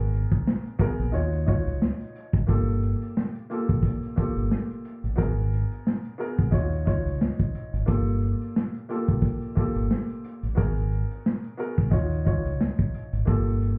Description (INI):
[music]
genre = hip hop, boom-bap hip-hop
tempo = 89 BPM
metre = 4/4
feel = swing 55% on 16ths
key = unclear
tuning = A4 = 440 Hz
[part]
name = warm grand piano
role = accompaniment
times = 0.0-13.8 s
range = Bb3 to Db5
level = -34 LUFS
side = equal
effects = cassette tape, high-pass filter, low-pass filter, plate reverb
[part]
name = deep dub fingered electric bass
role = bass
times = 0.0-13.7 s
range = G1 to Eb2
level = -28 LUFS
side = equal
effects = none
[part]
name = crunchy breakbeat drum kit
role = drums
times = 0.1-13.8 s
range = hi-hat, kick drum, snare drum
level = -27 LUFS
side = equal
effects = vintage 12-bit sampler grit
[sound]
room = light reverb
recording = heard muffled through a wall, club ambience, vinyl crackle, EQ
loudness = -26 LUFS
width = mono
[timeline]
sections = 0.0-2.5 A section; 2.5-13.8 B section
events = none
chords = 0.0 Abm9; 1.1 Ebm9; 2.5 Gm9; 5.2 Abm9; 6.5 Ebm9; 7.9 Gm9; 10.6 Abm9; 11.9 Ebm9; 13.3 Gm9